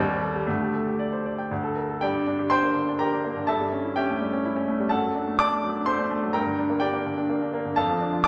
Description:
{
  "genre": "classical, virtuoso piano study",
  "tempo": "115-127 BPM",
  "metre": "3/4",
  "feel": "rubato",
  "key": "G minor",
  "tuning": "A4 = 440 Hz",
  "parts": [
    { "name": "clear baby grand piano", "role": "solo", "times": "0.0-8.3 s", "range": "D2 to D6", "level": "-25 LUFS", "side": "equal", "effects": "none" }
  ],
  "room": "wet recital hall reverb, RT60 1.7 s",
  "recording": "lossy compression artefacts",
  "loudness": "-26 LUFS",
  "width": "mono",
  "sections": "0.0-2.0 A section; 2.0-8.3 B section",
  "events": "none",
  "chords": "0.5 Dsus4; 1.5 D5; 2.0 Gm; 3.5 A7/G; 4.9 D/F#; 6.4 Gm",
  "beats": "| 0.48 0.99 1.51 | 2.02 2.51 3.00 | 3.48 3.96 4.44 | 4.92 5.40 5.88 | 6.35 6.83 7.30 | 7.78 8.26"
}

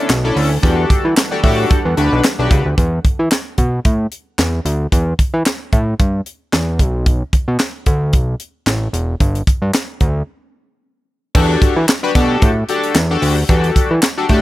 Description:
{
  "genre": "early-eighties boogie funk",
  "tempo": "112 BPM",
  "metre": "4/4",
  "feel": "swing 56% on 16ths",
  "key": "E minor",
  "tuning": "A4 = 441 Hz",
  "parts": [
    { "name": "chorused polysynth", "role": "accompaniment", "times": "0.0-2.6, 11.3-14.4 s", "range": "C#4 to B4", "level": "-18 LUFS", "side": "left 2 dB", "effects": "none" },
    { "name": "lush unison pad", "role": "sustained chords", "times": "0.0-2.8 s", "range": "D3 to F#5", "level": "-28 LUFS", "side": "right 2 dB", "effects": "none" },
    { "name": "fat analog bass", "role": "bass", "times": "0.1-14.4 s", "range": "E1 to E3", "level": "-16 LUFS", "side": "equal", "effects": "none" },
    { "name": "tight funk drum kit", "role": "drums", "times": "0.1-14.4 s", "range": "crash cymbal, handclaps, hi-hat, kick drum, snare drum", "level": "-15 LUFS", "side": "equal", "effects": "none" }
  ],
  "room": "studio ambience",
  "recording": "none",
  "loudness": "-13 LUFS",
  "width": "side -17 dB against mid",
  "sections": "0.0-2.8 A section; 2.8-11.3 B section; 11.3-14.4 A section",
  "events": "break 10.3-11.3",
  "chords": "0.0 Bm11; 0.6 Em11; 2.8 N.C.; 6.8 Bm7; 9.2 G5; 11.3 Em11",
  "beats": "0.10 | 0.63 1.17 1.71 2.24 | 2.78 3.31 3.85 4.38 | 4.92 5.46 5.99 6.53 | 7.06 7.60 8.13 8.67 | 9.21 9.74 10.28 10.81 | 11.35 11.88 12.42 12.96 | 13.49 14.03"
}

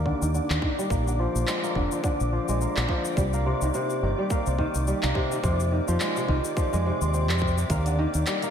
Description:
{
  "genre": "folktronica",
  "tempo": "106 BPM",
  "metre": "4/4",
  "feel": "swing 56% on 16ths",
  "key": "Eb major",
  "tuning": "A4 = 437 Hz",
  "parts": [
    { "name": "kora", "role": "arpeggios", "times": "0.0-8.5 s", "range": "C3 to C4", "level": "-27 LUFS", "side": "equal", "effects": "low-pass filter, ping-pong delay" },
    { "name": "deep dub fingered electric bass", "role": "bass", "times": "0.0-8.2 s", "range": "F1 to F2", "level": "-26 LUFS", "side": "equal", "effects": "tube saturation" },
    { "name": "flickering grainy texture", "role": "texture", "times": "0.0-8.5 s", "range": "D5 to D6", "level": "-35 LUFS", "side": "right 2 dB", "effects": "built-in reverb" },
    { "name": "electronic kick drum", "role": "drums", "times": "0.1-7.8 s", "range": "none", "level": "-29 LUFS", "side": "equal", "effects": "overdrive" },
    { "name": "organic electronic drum kit", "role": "drums", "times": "0.2-8.5 s", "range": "handclaps, hi-hat, shaker", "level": "-33 LUFS", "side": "left 1 dB", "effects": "overdrive" }
  ],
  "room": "moderate lush hall reverb, RT60 2.4 s",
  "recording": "dreamy mix soaked in reverb",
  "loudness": "-23 LUFS",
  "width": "side -8 dB against mid",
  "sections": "0.0-8.5 A section",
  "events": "filter sweep on kora 0.0-8.5",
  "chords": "0.0 Ebmaj7; 0.9 Bb7; 3.2 Cm7; 5.4 Fm7; 7.7 Ebmaj7",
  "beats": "0.34 | 0.91 1.48 2.04 2.61 | 3.17 3.74 4.31 4.87 | 5.44 6.00 6.57 7.14 | 7.70 8.27"
}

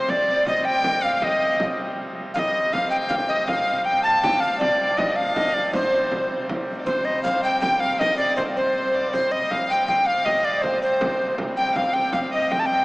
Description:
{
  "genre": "medieval dance",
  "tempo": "106 BPM (dotted quarters)",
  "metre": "6/8",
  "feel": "straight",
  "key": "C minor",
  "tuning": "A4 = 443 Hz",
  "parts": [
    { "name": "breathy bright alto recorder", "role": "melody", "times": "0.0-12.8 s", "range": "C5 to A5", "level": "-21 LUFS", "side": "equal", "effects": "none" },
    { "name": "warm fiddle", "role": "second line", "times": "0.0-12.8 s", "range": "C5 to A5", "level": "-27 LUFS", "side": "left 1 dB", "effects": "none" },
    { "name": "pipe organ, trumpet", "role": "drone", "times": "0.0-12.8 s", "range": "C3 to G3", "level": "-32 LUFS", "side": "equal", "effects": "none" },
    { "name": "frame drum", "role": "percussion", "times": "0.1-12.7 s", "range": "none", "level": "-30 LUFS", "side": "right 1 dB", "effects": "none" }
  ],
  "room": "wet cathedral reverb, RT60 5.0 s",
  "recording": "small speaker sound",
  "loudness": "-19 LUFS",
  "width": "side -22 dB against mid",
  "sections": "0.0-6.9 A section; 6.9-12.8 B section",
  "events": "none",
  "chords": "none",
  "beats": "| 0.09 0.65 | 1.22 1.78 | 2.35 2.91 | 3.48 4.04 | 4.61 5.17 | 5.74 6.30 | 6.87 7.43 | 8.00 8.56 | 9.12 9.69 | 10.25 10.82 | 11.38 11.95 | 12.51"
}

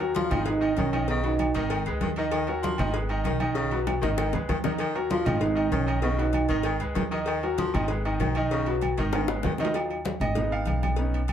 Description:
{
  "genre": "latin, salsa",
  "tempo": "194 BPM",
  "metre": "4/4",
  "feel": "straight",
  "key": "unclear",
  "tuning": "A4 = 441 Hz",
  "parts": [
    { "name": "clear concert grand piano", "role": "accompaniment", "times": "0.0-11.2 s", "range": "Eb3 to F5", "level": "-30 LUFS", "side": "equal", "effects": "none" },
    { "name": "upright bass", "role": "bass", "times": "0.0-11.3 s", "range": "Ab1 to Eb2", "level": "-30 LUFS", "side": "equal", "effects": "none" },
    { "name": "agogo bells and timbales", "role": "percussion", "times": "0.0-11.3 s", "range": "none", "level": "-34 LUFS", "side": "right 2 dB", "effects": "none" },
    { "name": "congas", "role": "percussion", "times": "0.0-11.3 s", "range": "none", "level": "-33 LUFS", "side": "equal", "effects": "none" },
    { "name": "cowbell and bongos", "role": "percussion", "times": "0.1-11.3 s", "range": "none", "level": "-35 LUFS", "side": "left 3 dB", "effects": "none" },
    { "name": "dark trombone", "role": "melody", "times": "0.2-1.8, 5.1-6.8 s", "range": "B3 to F4", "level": "-28 LUFS", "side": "right 3 dB", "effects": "slapback echo" },
    { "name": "warm baritone saxophone", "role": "second line", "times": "0.2-9.7 s", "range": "C#3 to F3", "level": "-33 LUFS", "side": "left 3 dB", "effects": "none" }
  ],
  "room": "wet small room reverb, RT60 0.5 s",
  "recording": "heard from further back in the room",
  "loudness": "-24 LUFS",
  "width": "side -9 dB against mid",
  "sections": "0.0-9.7 A section; 9.7-11.3 B section",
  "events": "drum fill 3.9-4.8, 9.1-9.7; grand piano solo 9.7-11.3",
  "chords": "0.5 Abm; 1.1 Badd9; 1.7 Abm; 2.3 Ebmadd9; 2.9 Abm; 3.6 Badd9; 4.2 Abm; 4.8 Ebmadd9; 5.4 Abm; 6.0 Badd9; 6.7 Abm; 7.3 Ebmadd9; 7.9 Abm; 8.5 Badd9; 9.1 Abm; 9.7 Ebmadd9; 10.4 Abm",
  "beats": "0.15 0.47 0.77 | 1.08 1.39 1.70 2.01 | 2.32 2.63 2.94 3.25 | 3.56 3.87 4.18 4.49 | 4.80 5.11 5.42 5.73 | 6.04 6.34 6.65 6.96 | 7.27 7.58 7.89 8.20 | 8.51 8.82 9.13 9.44 | 9.74 10.05 10.36 10.67 | 10.98 11.29"
}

